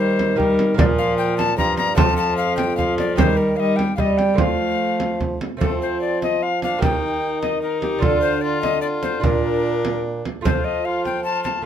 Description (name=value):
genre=classical, renaissance-style consort dance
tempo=149 BPM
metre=3/4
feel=straight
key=F mixolydian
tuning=A4 = 441 Hz
part: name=alto recorder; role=melody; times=0.0-11.6 s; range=G4 to Bb5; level=-23 LUFS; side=left 6 dB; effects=none
part: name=lute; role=accompaniment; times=0.0-11.7 s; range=F2 to A4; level=-26 LUFS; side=right 4 dB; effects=none
part: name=rich viola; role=accompaniment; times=0.0-11.7 s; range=F3 to F4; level=-25 LUFS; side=left 1 dB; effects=none
part: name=mellow bassoon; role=bass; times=0.0-11.7 s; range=F2 to G3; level=-24 LUFS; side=right 1 dB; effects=none
part: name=frame drum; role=percussion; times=0.2-11.6 s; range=none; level=-22 LUFS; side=right 2 dB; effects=none
room=light reverb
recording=none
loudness=-17 LUFS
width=side -9 dB against mid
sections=0.0-5.6 A section; 5.6-11.7 B section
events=none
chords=0.0 Eb; 0.8 Bb5; 2.0 F; 3.2 Eb; 4.4 F; 6.8 Eb; 8.0 Dm; 9.2 Bb; 10.5 F